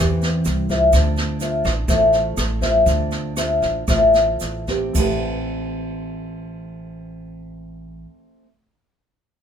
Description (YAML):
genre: bossa nova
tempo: 108-127 BPM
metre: 4/4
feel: straight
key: A minor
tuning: A4 = 440 Hz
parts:
  - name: nylon-string guitar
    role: accompaniment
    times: 0.0-8.5 s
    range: E3 to E5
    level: -19 LUFS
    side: left 1 dB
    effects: none
  - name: upright bass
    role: bass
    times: 0.0-8.0 s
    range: A1 to E2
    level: -24 LUFS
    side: equal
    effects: none
  - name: jazz brush drum kit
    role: drums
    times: 0.2-5.1 s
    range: crash cymbal, kick drum, rim click, snare drum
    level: -25 LUFS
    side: right 1 dB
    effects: none
  - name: egg shaker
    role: percussion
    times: 0.2-5.1 s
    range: none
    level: -35 LUFS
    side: right 8 dB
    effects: none
room: light reverb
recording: band playing live in one room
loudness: -17 LUFS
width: side -8 dB against mid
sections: 0.0-4.9 A section; 4.9-9.4 B section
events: slowing down 0.9-4.9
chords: 0.0 Am9 (rootless); 0.9 Dm9; 4.9 Am9